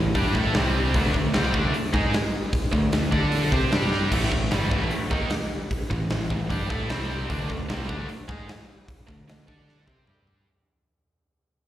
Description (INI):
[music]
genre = hard rock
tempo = 151 BPM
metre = 4/4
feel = straight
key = A minor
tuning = A4 = 440 Hz
[part]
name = tight distorted guitar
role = riff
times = 0.0-10.5 s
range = G2 to D5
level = -26 LUFS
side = equal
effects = distortion, slapback echo
[part]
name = picked electric bass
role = bass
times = 0.0-10.4 s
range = G1 to D3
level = -26 LUFS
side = equal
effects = none
[part]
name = huge arena drum kit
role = drums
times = 0.1-10.4 s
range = crash cymbal, hi-hat, kick drum, snare drum, toms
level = -26 LUFS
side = equal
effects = none
[sound]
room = light reverb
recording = live gig heard through the venue's PA, recital hall reverb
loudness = -22 LUFS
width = side -12 dB against mid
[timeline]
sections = 0.0-4.1 A section; 4.1-10.5 A section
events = drum fill 3.9, 9.7-10.5; fade-out 4.1-10.5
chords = 0.0 A5; 0.5 C5; 0.9 D5; 3.7 G5; 4.1 A5; 6.9 C5; 7.3 D5; 10.1 G5